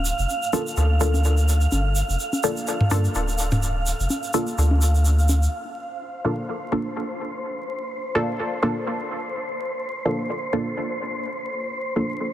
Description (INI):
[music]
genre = dub techno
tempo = 126 BPM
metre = 4/4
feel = swing 55% on 16ths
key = G minor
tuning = A4 = 440 Hz
[part]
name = warm sub bass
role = bass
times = 0.0-5.5 s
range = D1 to G2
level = -19 LUFS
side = equal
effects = none
[part]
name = wind-like tuned noise texture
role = texture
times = 0.0-12.3 s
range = C5 to F5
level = -30 LUFS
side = right 1 dB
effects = built-in reverb
[part]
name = egg shaker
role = percussion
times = 0.1-5.5 s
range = none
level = -31 LUFS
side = right 2 dB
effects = none
[part]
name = filtered dub chord stab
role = stabs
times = 0.5-12.2 s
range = Bb3 to A4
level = -26 LUFS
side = equal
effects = phaser, dub echo
[part]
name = electronic congas and toms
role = percussion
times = 0.5-5.4 s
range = none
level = -26 LUFS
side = left 1 dB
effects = dub echo
[sound]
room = light reverb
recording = dense, heavily limited modern master, vinyl crackle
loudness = -21 LUFS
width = side -13 dB against mid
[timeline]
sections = 0.0-5.5 A section; 5.5-12.3 B section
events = none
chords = 0.0 Gm7 (rootless)